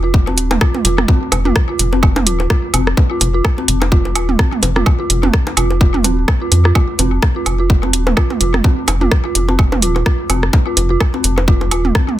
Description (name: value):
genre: minimal techno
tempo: 127 BPM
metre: 4/4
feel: swing 57% on 16ths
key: unclear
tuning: A4 = 440 Hz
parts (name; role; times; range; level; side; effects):
- dark detuned synth bell; riff; 0.0-12.0 s; C4 to F4; -20 LUFS; right 1 dB; chorus, sidechain pumping, ping-pong delay
- rubbery square bass; bass; 0.0-11.9 s; Eb1 to F2; -16 LUFS; equal; sidechain pumping
- electronic kick drum; drums; 0.1-12.1 s; none; -15 LUFS; equal; none
- electronic bongos, toms and woodblock; percussion; 0.3-12.2 s; none; -20 LUFS; right 2 dB; overdrive, ping-pong delay
- booming analog drum machine; drums; 0.4-12.1 s; hi-hat, rim click; -17 LUFS; equal; soft clipping on snare
room: little or no reverb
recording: dense, heavily limited modern master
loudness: -12 LUFS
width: side -14 dB against mid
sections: 0.0-12.2 A section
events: none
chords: 0.0 F5